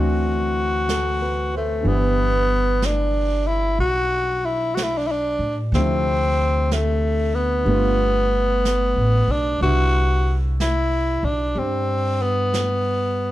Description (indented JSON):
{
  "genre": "jazz ballad",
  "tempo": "62 BPM",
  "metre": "4/4",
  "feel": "swing 66% on 8ths",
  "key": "G major",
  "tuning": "A4 = 440 Hz",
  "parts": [
    { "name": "growling tenor saxophone", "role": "melody", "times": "0.0-13.3 s", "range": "A3 to F#4", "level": "-21 LUFS", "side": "equal", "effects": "none" },
    { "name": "clear upright piano", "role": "accompaniment", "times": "0.0-13.3 s", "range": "C3 to C5", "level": "-28 LUFS", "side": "equal", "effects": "none" },
    { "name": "upright bass", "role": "bass", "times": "0.0-13.3 s", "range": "G1 to A2", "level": "-22 LUFS", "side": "equal", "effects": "none" },
    { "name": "jazz brush drum kit", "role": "drums", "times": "0.9-13.3 s", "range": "brushed snare drum, hi-hat, snare drum", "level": "-33 LUFS", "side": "right 3 dB", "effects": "none" }
  ],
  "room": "little or no reverb",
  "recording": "dark, warm production",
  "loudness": "-18 LUFS",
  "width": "side -15 dB against mid",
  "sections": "0.0-1.9 A section; 1.9-13.3 A section",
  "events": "none",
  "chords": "0.0 D9; 1.9 G6; 5.7 Dm9; 7.7 G9; 9.6 Cmaj9",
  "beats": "0.89 | 1.86 2.83 3.80 4.77 | 5.74 6.71 7.68 8.65 | 9.62 10.59 11.56 12.53"
}